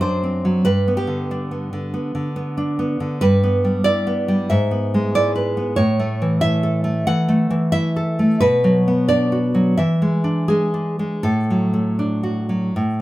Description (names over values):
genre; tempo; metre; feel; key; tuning
romantic piece for solo classical guitar; 78-95 BPM; 4/4; rubato; G major, D major from 3.2 s; A4 = 439 Hz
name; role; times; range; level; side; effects
nylon-string guitar; solo; 0.0-13.0 s; F#2 to F#5; -17 LUFS; equal; none
room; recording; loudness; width
moderate large studio reverb, RT60 0.9 s; band playing live in one room; -17 LUFS; side -16 dB against mid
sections
0.0-13.0 A section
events
none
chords
0.0 D7/F#; 0.7 G; 3.2 Em/G; 4.5 E7/G#; 5.8 A; 8.4 Bm; 9.8 E7; 11.2 D/A